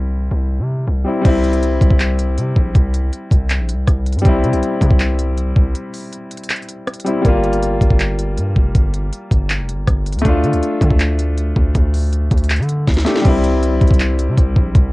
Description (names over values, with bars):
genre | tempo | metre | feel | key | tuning
hip hop, trap | 160 BPM | 4/4 | half-time | unclear | A4 = 440 Hz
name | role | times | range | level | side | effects
clear concert grand piano | accompaniment | 0.0-14.9 s | G3 to G4 | -20 LUFS | left 2 dB | low-pass filter, cassette tape
distorted 808-style bass | bass | 0.0-14.9 s | F1 to D3 | -17 LUFS | equal | distortion
trap drum kit | drums | 1.2-14.8 s | crash cymbal, handclaps, hi-hat, kick drum, rim click, snare drum | -15 LUFS | equal | vintage 12-bit sampler grit
room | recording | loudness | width
little or no reverb | home recording on cassette, lossy compression artefacts | -14 LUFS | side -20 dB against mid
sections
0.0-1.2 A section; 1.2-13.2 B section; 13.2-14.9 C section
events
break 5.8-7.2; drum fill 12.9-13.2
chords
0.0 C; 7.2 Gm7; 10.2 Dm; 13.2 C